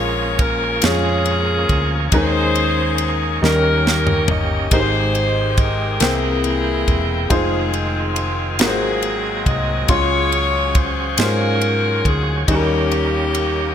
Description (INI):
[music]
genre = slow gospel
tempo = 46 BPM (dotted quarters)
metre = 6/8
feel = straight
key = Ab major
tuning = A4 = 440 Hz
[part]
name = clear saxophone section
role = melody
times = 0.0-13.7 s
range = Bb3 to Eb5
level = -21 LUFS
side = left 2 dB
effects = digital delay
[part]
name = warm baby grand piano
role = accompaniment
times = 0.0-13.7 s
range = Ab2 to C6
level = -22 LUFS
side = left 1 dB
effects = lush chorus
[part]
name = bright tonewheel organ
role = sustained chords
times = 0.0-13.7 s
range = Eb3 to G5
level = -25 LUFS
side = right 2 dB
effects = slow rotary speaker, overdrive
[part]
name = hollow-body short-scale fingered electric bass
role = bass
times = 0.0-13.7 s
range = E1 to Ab2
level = -22 LUFS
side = equal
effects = none
[part]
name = tight funk drum kit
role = drums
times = 0.4-13.5 s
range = kick drum, ride cymbal, snare drum, toms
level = -22 LUFS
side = equal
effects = none
[sound]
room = light reverb, small room ambience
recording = bright 1980s-style digital production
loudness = -15 LUFS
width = side -9 dB against mid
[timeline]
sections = 0.0-13.7 A section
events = drum fill 3.4-4.7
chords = 0.0 Bbm7; 2.1 Eb7sus4; 3.4 Eb7; 4.7 Abmaj7; 6.0 C7; 7.3 Fm7; 8.6 Ab13; 9.9 Dbmaj7; 12.5 Eb7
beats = 0.83 | 2.13 3.42 | 4.72 6.01 | 7.31 8.60 | 9.90 11.19 | 12.49